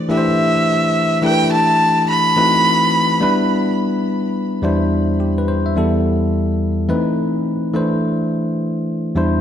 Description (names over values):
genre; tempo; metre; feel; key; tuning
R&B; 106 BPM; 4/4; swing 63% on 16ths; unclear; A4 = 441 Hz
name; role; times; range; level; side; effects
bell-like tine electric piano; accompaniment; 0.0-9.4 s; E2 to E5; -16 LUFS; left 1 dB; none
bright erhu; melody; 0.1-3.7 s; E5 to B5; -16 LUFS; right 1 dB; ping-pong delay
room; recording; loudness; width
moderate plate reverb, RT60 2.3 s; dark, warm production; -14 LUFS; side -9 dB against mid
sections
0.0-4.6 A section; 4.6-9.4 B section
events
none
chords
0.0 C69/E; 1.2 G69/E; 2.4 B7b9/E; 3.2 Em7; 4.6 D9sus4/E; 5.8 G69/E; 6.9 B7b9/E; 7.7 C69/E